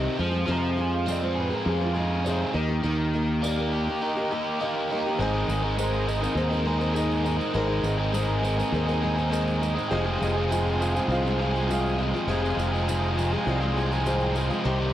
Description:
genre	folk rock and heartland rock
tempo	102 BPM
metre	4/4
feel	straight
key	F minor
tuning	A4 = 440 Hz
part	picked steel-string acoustic guitar	accompaniment	0.0-14.9 s	F2 to Bb4	-32 LUFS	left 2 dB	cassette tape
part	musette accordion	sustained chords	0.0-14.9 s	Eb4 to Eb6	-38 LUFS	equal	none
part	biting overdriven guitar	riff	0.0-14.9 s	F2 to Ab4	-27 LUFS	right 1 dB	cassette tape
part	fingered electric bass	bass	0.0-14.9 s	F1 to F2	-27 LUFS	equal	none
part	clear upright piano	second line	0.5-4.0, 9.9-12.9 s	D4 to Bb5	-34 LUFS	right 5 dB	cassette tape
part	warm upright piano	accompaniment	0.5-14.9 s	Eb4 to C6	-36 LUFS	left 4 dB	cassette tape
part	tambourine	percussion	1.1-14.6 s	none	-46 LUFS	right 8 dB	none
room	light reverb, small room ambience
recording	home recording on cassette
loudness	-23 LUFS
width	side -12 dB against mid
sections	0.0-5.2 A section; 5.2-14.9 B section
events	upright piano fill 8.7-9.9, 13.5-14.7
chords	0.2 Fm; 2.5 Eb; 5.2 Abadd9; 9.9 Fm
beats	| 0.49 1.08 1.67 2.25 | 2.84 3.43 4.02 4.61 | 5.20 5.79 6.38 6.97 | 7.56 8.15 8.74 9.33 | 9.92 10.51 11.10 11.69 | 12.29 12.88 13.47 14.06 | 14.65

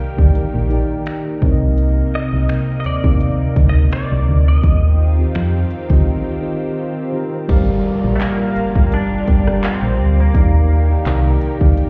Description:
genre	contemporary R&B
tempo	84 BPM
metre	4/4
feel	swing 54% on 16ths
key	Eb major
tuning	A4 = 439 Hz
part	direct-recorded clean electric guitar	melody	0.0-11.6 s	A3 to G5	-28 LUFS	equal	analog chorus, digital delay
part	mellow tine electric piano	accompaniment	0.0-11.9 s	C3 to Bb5	-23 LUFS	equal	none
part	lush unison pad	sustained chords	0.0-11.9 s	C3 to D5	-30 LUFS	equal	chorus
part	solid FM bass	bass	0.2-11.9 s	G1 to F2	-17 LUFS	equal	none
part	trap drum kit	drums	0.2-11.9 s	crash cymbal, finger snaps, handclaps, hi-hat, kick drum, rim click	-17 LUFS	equal	none
part	swell and downlifter	sound effects	6.8-11.9 s	none	-34 LUFS	equal	none
room	digital ambience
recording	heard muffled through a wall, stone room reverb, EQ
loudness	-16 LUFS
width	mono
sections	0.0-7.5 A section; 7.5-11.9 B section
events	break 6.1-7.5; tine electric piano fill 6.1-7.5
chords	0.0 Ebmaj7; 1.4 Cm9; 4.6 Eb69; 7.5 Gm7; 10.3 Ebmaj7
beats	0.35 1.06 | 1.78 2.49 3.20 3.92 | 4.63 5.35 6.06 6.78 | 7.49 8.20 8.92 9.63 | 10.35 11.06 11.78

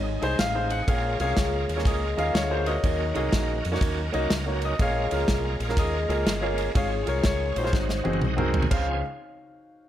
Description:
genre	uptempo gospel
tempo	122 BPM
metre	4/4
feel	swing 66% on 8ths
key	Db major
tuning	A4 = 440 Hz
part	concert harp	melody	0.0-9.0 s	Eb4 to Ab5	-30 LUFS	left 2 dB	none
part	warm upright piano	accompaniment	0.0-9.0 s	Db2 to F5	-30 LUFS	right 1 dB	none
part	bright tonewheel organ	sustained chords	0.0-9.0 s	C3 to Ab5	-35 LUFS	right 3 dB	slow rotary speaker, chorus vibrato
part	fingered electric bass with an envelope filter	bass	0.0-9.0 s	Gb1 to F2	-29 LUFS	equal	none
part	natural country drum kit	drums	0.2-8.9 s	kick drum, ride cymbal, snare drum, toms	-27 LUFS	equal	none
room	light reverb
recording	none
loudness	-23 LUFS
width	side -12 dB against mid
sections	0.0-8.7 A section; 8.7-9.9 B section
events	drum fill 7.7-8.7; tonewheel organ fill 8.0-8.7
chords	0.0 Ab; 0.9 Bbm7; 2.8 Ebm7; 4.8 Bbm7; 6.8 Db/Ab; 7.7 Ab7; 8.7 Dbmaj7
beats	0.39 | 0.88 1.37 1.86 2.35 | 2.84 3.33 3.82 4.31 | 4.80 5.29 5.78 6.27 | 6.76 7.25 7.74 8.23 | 8.72

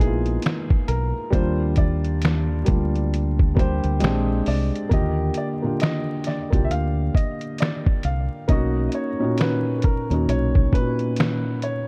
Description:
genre	lo-fi hip hop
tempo	67 BPM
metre	4/4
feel	swing 61% on 16ths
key	Eb major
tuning	A4 = 439 Hz
part	clear upright piano	melody	0.0-11.9 s	Ab4 to F5	-34 LUFS	equal	low-pass filter, tape echo
part	felt-muted upright piano	accompaniment	0.0-11.9 s	A#2 to G4	-27 LUFS	equal	cassette tape, low-pass filter
part	deep dub fingered electric bass	bass	0.0-10.7 s	Bb1 to Eb2	-25 LUFS	equal	none
part	lo-fi sampler-style drum kit	drums	0.0-11.9 s	finger snaps, hi-hat, kick drum, snare drum	-23 LUFS	equal	none
room	light reverb, studio reverb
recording	dark, warm production, vinyl crackle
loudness	-22 LUFS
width	mono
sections	0.0-4.9 A section; 4.9-11.9 B section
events	none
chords	0.0 Abm6; 1.3 Ebmaj9; 4.0 Bb13; 4.9 Ebmaj9; 8.5 Bmaj9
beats	0.43 | 1.33 2.22 3.12 4.02 | 4.91 5.81 6.70 7.60 | 8.49 9.39 10.28 11.18

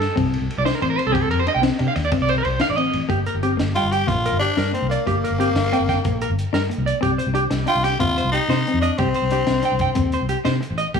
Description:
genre	highlife guitar band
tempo	122 BPM (dotted quarters)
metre	12/8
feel	straight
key	unclear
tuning	A4 = 438 Hz
part	clean electric guitar	accompaniment	0.0-11.0 s	G3 to Eb4	-26 LUFS	left 7 dB	none
part	clean electric guitar	arpeggios	0.0-11.0 s	G4 to G5	-23 LUFS	right 4 dB	tremolo, tape echo
part	fingered electric bass	bass	0.0-11.0 s	G1 to C3	-23 LUFS	equal	none
part	crunchy breakbeat drum kit	drums	0.0-11.0 s	hi-hat, kick drum, ride cymbal, snare drum	-27 LUFS	equal	none
part	raspy tenor saxophone	melody	3.8-10.3 s	Bb3 to G4	-22 LUFS	left 3 dB	none
room	light reverb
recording	none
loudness	-18 LUFS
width	side -6 dB against mid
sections	0.0-3.1 A section; 3.1-11.0 B section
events	clean electric guitar solo 0.0-3.1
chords	0.0 Cm; 3.1 Gm; 7.0 Cm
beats	0.17 0.66 | 1.15 1.64 2.12 2.61 | 3.10 3.59 4.08 4.57 | 5.06 5.55 6.04 6.53 | 7.02 7.51 8.00 8.49 | 8.98 9.47 9.96 10.45 | 10.94

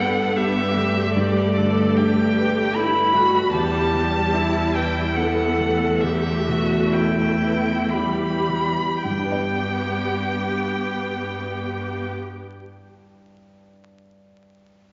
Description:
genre	cinematic, emotional film score for orchestra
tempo	54-78 BPM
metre	3/4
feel	rubato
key	G major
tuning	A4 = 440 Hz
part	rich violin	melody	0.0-12.1 s	D5 to B5	-27 LUFS	equal	none
part	warm concert grand piano	accompaniment	0.0-14.9 s	E2 to D5	-30 LUFS	equal	none
part	warm symphonic viola section	accompaniment	0.0-12.1 s	G3 to A4	-26 LUFS	equal	none
part	concert harp	arpeggios	0.0-12.9 s	E2 to D6	-39 LUFS	equal	none
part	rich studio cello section	bass	0.0-12.1 s	E2 to G2	-28 LUFS	equal	none
room	wet scoring stage reverb, RT60 1.8 s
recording	vinyl crackle, nothing above 7.6 kHz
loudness	-21 LUFS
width	mono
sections	0.0-9.0 A section; 9.0-12.3 B section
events	slowing down 2.4-9.0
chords	0.0 G; 3.5 Em; 9.0 G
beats	0.36 | 1.15 1.97 2.75 | 3.54 4.34 5.16 | 6.02 6.94 7.95 | 9.04 10.15 11.24

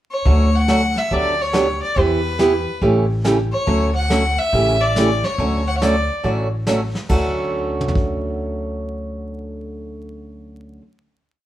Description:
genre	country, western swing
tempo	140 BPM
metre	4/4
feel	swing 65% on 8ths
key	D major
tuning	A4 = 440 Hz
part	clear fiddle	melody	0.1-6.3 s	B4 to F#5	-21 LUFS	left 1 dB	none
part	picked old ladder-braced acoustic guitar	accompaniment	0.3-10.8 s	C#3 to G4	-20 LUFS	right 2 dB	none
part	upright bass	bass	0.3-10.8 s	A1 to E2	-21 LUFS	equal	none
part	vintage brush drum kit	drums	0.3-8.1 s	brushed snare drum, crash cymbal, hi-hat, kick drum, snare drum, toms	-26 LUFS	equal	none
room	moderate studio reverb, RT60 0.8 s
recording	band playing live in one room, vinyl crackle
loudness	-16 LUFS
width	side -13 dB against mid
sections	0.0-0.3 pickup bar; 0.3-7.1 A section; 7.1-10.5 final chord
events	none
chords	0.3 Dmaj7; 1.1 Gmaj7/D; 2.0 Em; 2.8 A7; 3.7 Dmaj7; 4.5 A7; 5.4 Dmaj7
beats	| 0.26 0.69 1.11 1.54 | 1.97 2.40 2.82 3.25 | 3.68 4.11 4.53 4.96 | 5.39 5.82 6.25 6.67 | 7.10 7.53 7.96 8.39 | 8.81 9.24 9.67 10.10

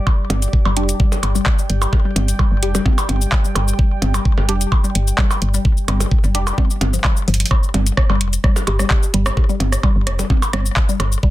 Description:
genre	minimal techno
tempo	129 BPM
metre	4/4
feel	straight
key	unclear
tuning	A4 = 440 Hz
part	warbly tape-like pad	texture	0.0-7.5 s	G3 to D6	-29 LUFS	right 1 dB	chorus, built-in reverb, sidechain pumping
part	electronic kick drum	drums	0.1-11.3 s	none	-15 LUFS	equal	none
part	electronic percussion blips and rim click	percussion	0.1-11.1 s	none	-24 LUFS	right 2 dB	soft clipping on snare, ping-pong delay
part	hollow square pluck	riff	0.3-11.3 s	F3 to G3	-26 LUFS	left 2 dB	chorus, sidechain pumping, ping-pong delay
part	woody FM bass	bass	0.3-11.2 s	F1 to G1	-18 LUFS	equal	sidechain pumping
part	garage drum kit	drums	0.3-11.2 s	handclaps, hi-hat, shaker	-22 LUFS	left 1 dB	none
part	filtered dub chord stab	stabs	0.8-6.5 s	G3 to G4	-25 LUFS	right 1 dB	phaser, analog chorus, ping-pong delay
part	kalimba	melody	8.7-9.1 s	G4	-31 LUFS	equal	ping-pong delay
room	little or no reverb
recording	dense, heavily limited modern master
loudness	-14 LUFS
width	side -16 dB against mid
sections	0.0-7.5 A section; 7.5-11.3 B section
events	drum fill 7.3; drop 7.5-11.3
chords	0.0 G5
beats	| 0.07 0.53 1.00 1.46 | 1.93 2.39 2.86 3.32 | 3.79 4.25 4.72 5.18 | 5.65 6.12 6.58 7.04 | 7.51 7.97 8.44 8.90 | 9.37 9.84 10.30 10.77 | 11.23

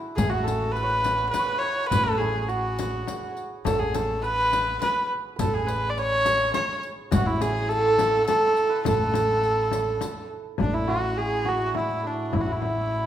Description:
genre	Persian modal ensemble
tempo	104 BPM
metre	3/4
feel	straight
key	A dastgah mahur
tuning	A4 = 440 Hz
part	santur	second line	0.0-13.1 s	D4 to C#5	-31 LUFS	right 4 dB	none
part	clear kamancheh	melody	0.2-13.1 s	D4 to D5	-24 LUFS	equal	none
part	upright bass	bass	0.2-13.1 s	A1	-29 LUFS	equal	none
part	frame drum	percussion	0.2-12.8 s	none	-33 LUFS	left 5 dB	none
part	riq	percussion	0.2-10.2 s	none	-38 LUFS	left 2 dB	none
part	tombak	percussion	0.2-13.0 s	none	-34 LUFS	equal	none
part	rich double bass	drone	10.6-13.1 s	A2	-35 LUFS	equal	none
room	wet recital hall reverb, RT60 1.4 s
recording	minimal, uncompressed stereo recording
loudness	-22 LUFS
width	side -11 dB against mid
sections	0.0-10.6 A section; 10.6-13.1 B section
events	none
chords	none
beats	| 0.17 0.75 1.33 | 1.91 2.49 3.07 | 3.65 4.23 4.81 | 5.39 5.97 6.54 | 7.12 7.70 8.28 | 8.86 9.44 10.02 | 10.60 11.17 11.75 | 12.33 12.91

